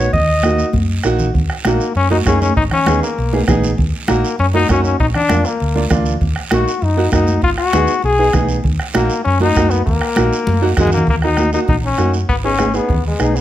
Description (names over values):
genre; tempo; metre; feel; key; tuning
latin, cumbia; 198 BPM; 4/4; straight; Eb minor; A4 = 438 Hz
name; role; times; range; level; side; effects
mellow clarinet; melody; 0.0-0.7 s; Db5 to Eb5; -17 LUFS; equal; none
clear upright piano; accompaniment; 0.0-13.4 s; Bb3 to Ab4; -20 LUFS; right 3 dB; none
hollow-body short-scale fingered electric bass; bass; 0.0-13.4 s; Ab1 to Gb2; -18 LUFS; equal; none
bombo; percussion; 0.1-13.4 s; none; -20 LUFS; right 1 dB; none
congas; percussion; 0.1-13.4 s; none; -22 LUFS; left 1 dB; none
guiro; percussion; 0.1-13.4 s; none; -31 LUFS; right 6 dB; none
bright trombone; second line; 1.7-13.4 s; Ab3 to Ab4; -18 LUFS; left 4 dB; none
room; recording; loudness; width
moderate large studio reverb, RT60 1.0 s; none; -13 LUFS; side -12 dB against mid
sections
0.0-1.4 A section; 1.4-11.1 B section; 11.1-13.4 C section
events
clarinet solo 0.0-1.4; drum fill 0.7-1.4, 10.5-11.1; trombone solo 1.4-11.1, 11.1-13.4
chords
0.1 Ebm; 2.6 Abm; 3.8 Ebm; 5.0 Bb; 6.2 Ebm; 7.4 Abm; 8.6 Ebm; 12.3 Abm